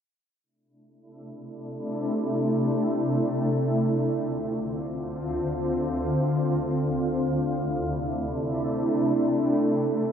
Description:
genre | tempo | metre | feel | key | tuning
hip hop | free time | none | none | C major | A4 = 442 Hz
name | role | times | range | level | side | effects
granular cloud pad | sustained chords | 1.3-10.1 s | D2 to F4 | -24 LUFS | equal | built-in reverb
room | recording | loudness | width
wet lush hall reverb, RT60 1.6 s, digital ambience | dreamy mix soaked in reverb, low-pass filter | -24 LUFS | side -8 dB against mid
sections
0.4-10.1 A section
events
filter sweep 0.4-10.1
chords
0.4 C69; 3.7 Dm7; 6.9 C69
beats
free time

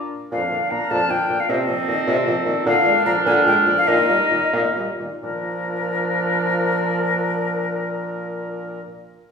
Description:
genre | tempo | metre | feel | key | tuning
quick classical-period movement for wind quintet | 127-155 BPM | 3/4 | straight | Bb major | A4 = 440 Hz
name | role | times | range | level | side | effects
mellow oboe | second line | 0.0-8.8 s | A4 to D5 | -25 LUFS | equal | none
bright clarinet | accompaniment | 0.0-8.8 s | C4 to F4 | -26 LUFS | right 6 dB | none
mellow French horn | accompaniment | 0.0-8.8 s | F2 to D4 | -26 LUFS | equal | none
mellow bassoon | bass | 0.0-8.8 s | Bb2 | -25 LUFS | equal | none
concert flute | melody | 0.3-8.8 s | Bb4 to Bb5 | -22 LUFS | left 4 dB | none
room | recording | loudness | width
wet recital hall reverb, RT60 1.5 s | recorded in a church or concert hall, studio reverb | -18 LUFS | side -6 dB against mid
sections
0.3-5.2 A section; 5.2-8.0 B section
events
slowing down 2.1-5.2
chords
0.3 Bb/F; 1.5 F7/Bb; 2.7 Bb7; 3.9 Eb/Bb; 5.2 Bb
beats
| 0.32 0.71 1.11 | 1.50 1.89 2.28 | 2.67 3.06 3.47 | 3.88 4.31 4.76 | 5.23 5.70 6.17 | 6.64 7.11 7.58

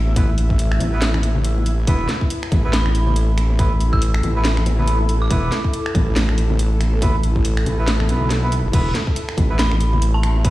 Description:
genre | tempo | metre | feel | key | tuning
deep dubstep | 140 BPM | 4/4 | swing 58% on 16ths, half-time | unclear | A4 = 441 Hz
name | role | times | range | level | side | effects
granular cloud pad | sustained chords | 0.0-10.5 s | E4 to E5 | -29 LUFS | equal | built-in reverb
wobble bass | bass | 0.0-10.5 s | E1 to B1 | -18 LUFS | equal | chorus, tube saturation
bongos and congas | percussion | 0.1-10.5 s | none | -28 LUFS | left 2 dB | dub echo
melodica | stabs | 0.2-10.5 s | B3 to B4 | -28 LUFS | right 2 dB | dub echo
electronic kick drum | drums | 0.2-10.5 s | none | -18 LUFS | equal | none
garage drum kit | drums | 0.2-10.5 s | crash cymbal, finger snaps, hi-hat, snare drum | -25 LUFS | equal | none
dark detuned synth bell | melody | 2.7-5.8, 9.6-10.4 s | A5 to E6 | -28 LUFS | right 2 dB | chorus, dub echo
room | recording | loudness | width
digital ambience | played on a big sound system in a bare room, stone room reverb | -16 LUFS | side -17 dB against mid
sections
0.0-10.5 A section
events
none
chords
0.0 E5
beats
| 0.16 0.59 1.02 1.45 | 1.88 2.31 2.73 3.16 | 3.59 4.02 4.45 4.88 | 5.30 5.73 6.16 6.59 | 7.02 7.45 7.88 8.30 | 8.73 9.16 9.59 10.02 | 10.45

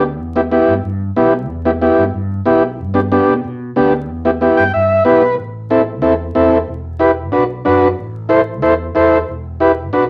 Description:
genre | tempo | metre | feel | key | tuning
latin, cumbia | 185 BPM | 4/4 | straight | E minor | A4 = 438 Hz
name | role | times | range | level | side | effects
combo organ | accompaniment | 0.0-10.0 s | B3 to G5 | -14 LUFS | equal | none
fretless electric bass | bass | 0.0-10.1 s | E1 to B2 | -25 LUFS | equal | none
room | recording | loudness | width
wet studio reverb, RT60 0.6 s | vinyl crackle | -14 LUFS | mono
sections
0.0-5.4 A section; 5.4-10.1 B section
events
transistor combo organ fill 4.4-5.4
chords
0.2 Em; 2.8 G; 4.1 Em; 5.4 Am; 6.7 Em; 7.3 Bm; 8.0 Am; 9.3 Em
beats
| 0.19 0.51 0.84 1.16 | 1.49 1.81 2.13 2.46 | 2.78 3.11 3.43 3.76 | 4.08 4.41 4.73 5.06 | 5.38 5.71 6.03 6.36 | 6.68 7.00 7.33 7.66 | 7.98 8.30 8.63 8.96 | 9.28 9.60 9.93

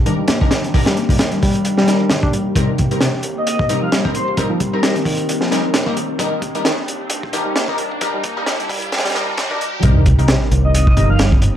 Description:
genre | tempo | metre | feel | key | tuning
breakbeat, breaks | 132 BPM | 4/4 | swing 56% on 16ths | C minor | A4 = 440 Hz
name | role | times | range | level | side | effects
warbly tape-like pad | sustained chords | 0.0-11.6 s | Eb3 to G4 | -25 LUFS | equal | chorus, built-in reverb, phaser, vintage 12-bit sampler grit, sidechain pumping
reed electric piano | riff | 0.1-11.3 s | Bb2 to D4 | -21 LUFS | left 1 dB | low-pass filter, dub echo
orchestra-hit-like synth stab | stabs | 0.1-11.1 s | G3 to Bb4 | -24 LUFS | left 2 dB | built-in reverb, dub echo
fingered electric bass | bass | 0.1-11.5 s | G1 to G2 | -21 LUFS | equal | none
crunchy breakbeat drum kit | drums | 0.1-11.5 s | hi-hat, kick drum, snare drum | -18 LUFS | equal | none
riser and sub drop | sound effects | 5.3-11.6 s | none | -26 LUFS | equal | none
airy dreamy lead | melody | 3.4-4.9, 10.6-11.2 s | Bb4 to F5 | -23 LUFS | left 1 dB | chorus, phaser, AM radio sound, cassette tape, dub echo
room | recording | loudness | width
wet studio reverb, RT60 0.5 s | dark, warm production, high-pass filter | -14 LUFS | side -10 dB against mid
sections
0.0-9.8 A section; 9.8-11.6 B section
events
build-up 0.0-9.8; filter sweep on reed electric piano 0.0-9.8; filter sweep 0.0-9.8; riser 5.3-9.8; drop 9.8-11.6; impact 9.8-11.6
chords
0.0 Ebmaj7; 2.6 Cm7; 6.2 Ebmaj7; 9.8 Cm7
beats
0.29 | 0.74 1.20 1.65 2.10 | 2.56 3.01 3.47 3.92 | 4.38 4.83 5.29 5.74 | 6.20 6.65 7.11 7.56 | 8.01 8.47 8.92 9.38 | 9.83 10.29 10.74 11.20

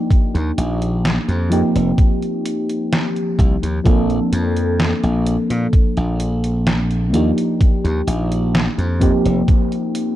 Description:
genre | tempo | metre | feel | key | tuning
vaporwave | 64 BPM | 4/4 | straight | Bb major | A4 = 440 Hz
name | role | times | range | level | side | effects
mellow FM electric piano | accompaniment | 0.0-10.2 s | F3 to A4 | -20 LUFS | equal | lush chorus, cassette tape, analog delay
glassy slap bass | bass | 0.1-9.4 s | F1 to Bb2 | -19 LUFS | equal | tube saturation
detuned 8-bit digital drum machine | drums | 0.1-10.1 s | hi-hat, snare drum | -22 LUFS | equal | studio reverb
electronic kick drum | drums | 0.1-9.7 s | none | -14 LUFS | equal | studio reverb
room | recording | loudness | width
light reverb | dark, warm production | -15 LUFS | side -13 dB against mid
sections
0.0-10.2 A section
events
none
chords
0.0 Ebmaj7; 1.5 F7sus4; 3.9 Bbmaj7; 7.1 Ebmaj7; 9.0 F7sus4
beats
| 0.11 1.04 1.98 2.92 | 3.86 4.79 5.73 6.67 | 7.61 8.54 9.48

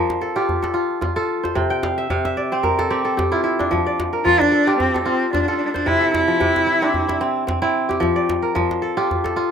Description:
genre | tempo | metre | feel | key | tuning
west african traditional, West African string and xylophone music | 112 BPM | 4/4 | swing 55% on 16ths | F major | A4 = 438 Hz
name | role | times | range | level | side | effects
kora | arpeggios | 0.0-9.5 s | C3 to G5 | -19 LUFS | equal | none
djembe | percussion | 0.1-9.4 s | none | -26 LUFS | equal | none
rich cello | melody | 4.2-7.2 s | C4 to F4 | -17 LUFS | equal | none
room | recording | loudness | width
moderate small room reverb, RT60 0.6 s | rough home demo mix | -17 LUFS | side -7 dB against mid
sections
0.0-9.5 A section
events
kora fill 1.7-3.7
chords
0.0 F; 1.6 C; 3.7 F; 5.9 C; 8.0 F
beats
0.48 1.02 | 1.56 2.09 2.63 3.17 | 3.71 4.25 4.78 5.32 | 5.86 6.40 6.93 7.47 | 8.01 8.55 9.09

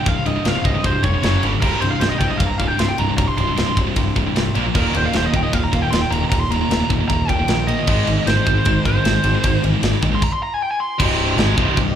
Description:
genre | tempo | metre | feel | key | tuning
heavy metal | 154 BPM | 4/4 | straight | C minor | A4 = 440 Hz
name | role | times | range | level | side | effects
high-gain lead guitar | melody | 0.0-11.0 s | Bb4 to C6 | -23 LUFS | equal | distortion, slapback echo, digital delay
fuzz guitar | riff | 0.0-11.9 s | C2 to Bb3 | -26 LUFS | equal | distortion, slapback echo
scooped high-gain guitar | riff | 0.0-11.9 s | C2 to Bb3 | -24 LUFS | right 10 dB | distortion
tight distorted guitar | riff | 0.0-11.9 s | C2 to Bb3 | -25 LUFS | left 9 dB | distortion
overdriven picked electric bass | bass | 0.1-11.9 s | C1 to Bb1 | -21 LUFS | equal | none
tight metal drum kit | drums | 0.1-11.9 s | crash cymbal, kick drum, ride cymbal, snare drum | -22 LUFS | equal | none
muted symphonic string section | sustained chords | 11.0-12.0 s | C4 to Eb5 | -31 LUFS | left 1 dB | none
room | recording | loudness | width
studio reverb | live gig heard through the venue's PA, club reverb | -16 LUFS | side -9 dB against mid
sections
0.0-11.0 A section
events
lead electric guitar solo 0.0-11.0; stop 10.2-11.0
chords
0.0 C5; 1.2 F#5; 1.4 G5; 1.6 C5; 4.6 Bb5; 4.8 Eb; 7.9 Ab; 11.0 Cm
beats
| 0.06 0.45 0.84 1.24 | 1.63 2.02 2.41 2.80 | 3.19 3.58 3.97 4.36 | 4.75 5.14 5.54 5.93 | 6.32 6.71 7.10 7.49 | 7.88 8.27 8.66 9.05 | 9.44 9.83 10.22 10.61 | 11.00 11.38 11.77

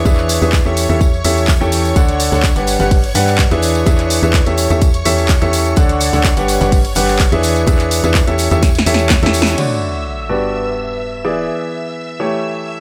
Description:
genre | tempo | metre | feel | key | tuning
piano house | 126 BPM | 4/4 | straight | D major | A4 = 441 Hz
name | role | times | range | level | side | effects
string machine, violins | sustained chords | 0.0-12.8 s | C#5 to E6 | -28 LUFS | equal | ensemble chorus, sidechain pumping
clear concert grand piano | riff | 0.0-12.8 s | G2 to G5 | -19 LUFS | equal | sidechain pumping, low-pass filter, tape echo
organ-like FM bass | bass | 0.0-9.6 s | G1 to G2 | -21 LUFS | equal | sidechain pumping
big rock drum kit | drums | 0.1-9.6 s | hi-hat, snare drum, tambourine | -32 LUFS | equal | none
electronic kick drum | drums | 0.1-9.2 s | none | -16 LUFS | equal | none
punchy analog drum machine | drums | 0.1-9.7 s | crash cymbal, handclaps, hi-hat, snare drum, tambourine | -22 LUFS | equal | none
congas and tambourine | percussion | 0.1-9.6 s | none | -27 LUFS | equal | none
sub drop | sound effects | 9.6-11.5 s | none | -28 LUFS | equal | none
room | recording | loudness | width
light reverb, small room ambience | none | -14 LUFS | mono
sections
0.0-9.6 A section; 9.6-12.8 B section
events
drum fill 8.6-9.6; band accent 9.4; impact 9.6-11.5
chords
0.0 E7; 0.8 A7/E; 2.0 Dmaj7; 2.7 Gmaj7; 3.6 E7; 4.6 A7/E; 5.8 Dmaj7; 6.5 Gmaj7; 7.4 E7; 8.4 A7/E; 9.6 Dmaj7; 10.3 Gmaj7; 11.2 E7; 12.2 A7/E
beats
| 0.06 0.53 1.01 1.48 | 1.96 2.44 2.91 3.39 | 3.87 4.34 4.82 5.29 | 5.77 6.25 6.72 7.20 | 7.67 8.15 8.63 9.10 | 9.58 10.06 10.53 11.01 | 11.48 11.96 12.44

